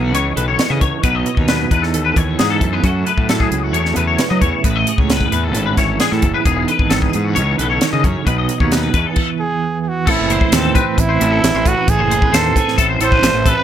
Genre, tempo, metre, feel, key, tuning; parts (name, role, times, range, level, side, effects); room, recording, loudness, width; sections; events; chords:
math rock and midwest emo; 133 BPM; 4/4; straight; A4 = 440 Hz
twelve-string electric guitar; accompaniment; 0.0-13.6 s; E2 to B4; -21 LUFS; right 8 dB; tremolo
twangy electric guitar; arpeggios; 0.0-13.6 s; F#4 to E5; -20 LUFS; left 8 dB; ensemble chorus, analog delay
fuzz fingered electric bass; bass; 0.0-13.5 s; E1 to F#3; -19 LUFS; left 1 dB; overdrive
crisp fusion drum kit; drums; 0.1-13.6 s; crash cymbal, hi-hat, kick drum, snare drum; -18 LUFS; equal
growling trumpet; melody; 9.4-13.6 s; C4 to C5; -18 LUFS; right 3 dB
little or no reverb; -13 LUFS; side -10 dB against mid
0.0-10.1 A section; 10.1-13.6 B section
stop 9.2-10.1
0.1 C#m9; 1.0 B; 1.7 Emaj7; 2.8 F#m7; 4.6 Amaj9; 6.5 Emaj7; 7.4 C#m9; 8.3 B; 8.9 Emaj7; 10.1 Am